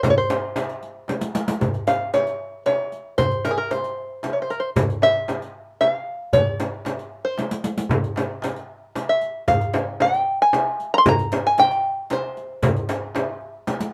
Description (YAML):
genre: Arabic maqam ensemble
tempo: 114 BPM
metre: 3/4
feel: straight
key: C maqam hijaz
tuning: A4 = 440 Hz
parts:
  - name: open-back banjo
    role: melody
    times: 0.0-13.7 s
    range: Ab4 to C6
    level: -22 LUFS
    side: equal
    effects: none
  - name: darbuka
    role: percussion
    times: 0.0-13.8 s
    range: none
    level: -31 LUFS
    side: equal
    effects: none
  - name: frame drum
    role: percussion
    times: 0.0-13.8 s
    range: none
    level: -27 LUFS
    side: equal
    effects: none
  - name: riq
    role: percussion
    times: 0.0-13.9 s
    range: none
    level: -32 LUFS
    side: equal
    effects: none
room: light reverb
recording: none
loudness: -22 LUFS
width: mono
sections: 0.0-1.6 A section; 1.6-13.9 B section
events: drum fill 1.1-1.6, 7.4-7.9, 13.7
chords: none